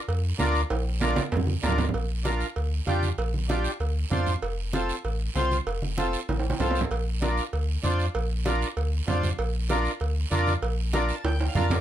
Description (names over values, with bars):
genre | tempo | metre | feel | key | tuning
latin, cumbia | 194 BPM | 4/4 | straight | Bb major | A4 = 440 Hz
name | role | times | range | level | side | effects
warm sub bass | bass | 0.1-11.8 s | F1 to F2 | -27 LUFS | equal | none
congas | percussion | 0.1-11.8 s | none | -31 LUFS | right 2 dB | none
cowbell and timbales | percussion | 0.1-11.8 s | none | -33 LUFS | right 4 dB | none
guiro | percussion | 0.1-11.8 s | none | -39 LUFS | right 7 dB | none
accordion | accompaniment | 0.4-11.8 s | C4 to A5 | -28 LUFS | equal | none
room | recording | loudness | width
light reverb | none | -24 LUFS | side -11 dB against mid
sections
0.0-1.9 A section; 1.9-11.8 B section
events
drum fill 0.7-1.9, 6.3-6.9, 11.2-11.8; accordion fill 10.9-11.8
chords
0.0 Bb; 4.4 F; 6.9 Bb